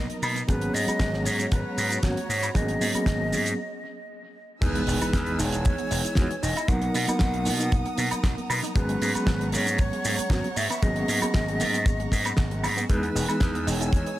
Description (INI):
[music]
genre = nu-disco, nu disco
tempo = 116 BPM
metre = 4/4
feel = straight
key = G# minor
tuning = A4 = 440 Hz
[part]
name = breathy jazz flute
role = melody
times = 0.0-14.2 s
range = B4 to F#5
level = -32 LUFS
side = equal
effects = tape echo
[part]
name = reed electric piano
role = accompaniment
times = 0.0-14.2 s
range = E3 to A#4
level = -29 LUFS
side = equal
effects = fast tremolo, sidechain pumping, tape echo
[part]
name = rich studio violin section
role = sustained chords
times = 0.0-14.2 s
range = D#4 to E6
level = -39 LUFS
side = equal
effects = sidechain pumping
[part]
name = gritty slap bass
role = bass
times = 0.0-14.0 s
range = E1 to B2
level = -28 LUFS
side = equal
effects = overdrive
[part]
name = damped 70s drum kit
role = drums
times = 0.1-14.2 s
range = crash cymbal, hi-hat, shaker, snare drum, woodblock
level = -31 LUFS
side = right 2 dB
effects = studio reverb, tape echo
[part]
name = kick drum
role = drums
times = 0.5-14.0 s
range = none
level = -24 LUFS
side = equal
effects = studio reverb
[part]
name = congas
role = percussion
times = 2.2-2.9 s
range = none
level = -40 LUFS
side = right 5 dB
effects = none
[part]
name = wide unison pluck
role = arpeggios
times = 4.6-14.2 s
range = F#3 to E4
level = -36 LUFS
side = right 2 dB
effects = none
[part]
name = impact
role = sound effects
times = 4.6-6.7 s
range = none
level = -35 LUFS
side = equal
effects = none
[sound]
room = light reverb, small room reverb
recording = echo-heavy mix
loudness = -22 LUFS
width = side -15 dB against mid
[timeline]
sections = 0.0-4.6 A section; 4.6-14.2 B section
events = break 3.6-4.6; drop 4.6-14.2; impact 4.6-6.7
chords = 0.5 G#m11; 4.6 Emaj7; 6.7 Bmaj7; 8.8 G#m11; 12.9 Emaj7